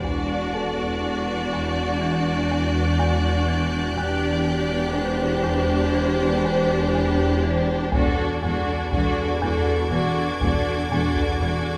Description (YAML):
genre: cinematic, suspense film score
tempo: 61 BPM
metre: 4/4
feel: straight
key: unclear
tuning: A4 = 436 Hz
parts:
  - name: rich symphonic violin section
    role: melody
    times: 0.0-11.8 s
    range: A4 to D5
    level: -31 LUFS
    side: equal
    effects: none
  - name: warm symphonic violin section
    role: second line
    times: 0.0-11.8 s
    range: F#4 to G4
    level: -31 LUFS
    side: equal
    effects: none
  - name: warm symphonic viola section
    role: accompaniment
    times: 0.0-11.8 s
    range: D4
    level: -30 LUFS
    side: equal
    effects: none
  - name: marimba with hard mallets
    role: riff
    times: 0.0-11.7 s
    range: E2 to E3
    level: -30 LUFS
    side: equal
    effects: none
  - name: rich symphonic double bass section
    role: bass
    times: 0.0-11.5 s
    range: E1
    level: -32 LUFS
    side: equal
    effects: none
  - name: organ-like drone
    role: drone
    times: 0.0-11.8 s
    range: E2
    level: -34 LUFS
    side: equal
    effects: none
  - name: solo taiko drums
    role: drums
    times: 0.0-2.0, 7.9-11.8 s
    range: none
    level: -32 LUFS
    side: equal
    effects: none
  - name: rich symphonic violin section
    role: texture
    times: 0.0-11.8 s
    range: D6 to G#6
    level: -38 LUFS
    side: equal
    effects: none
  - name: rich symphonic cello section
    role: bass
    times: 0.1-11.5 s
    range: E2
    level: -32 LUFS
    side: equal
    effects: none
  - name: dark baby grand piano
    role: texture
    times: 0.5-8.0 s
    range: A4 to F#6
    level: -38 LUFS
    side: equal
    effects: none
room: wet concert hall reverb, RT60 2.3 s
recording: recorded in a church or concert hall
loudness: -22 LUFS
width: mono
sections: 0.0-11.8 A section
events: none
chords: 0.0 D/E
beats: | 0.04 1.03 2.02 2.99 | 3.97 4.96 5.95 6.95 | 7.94 8.93 9.92 10.92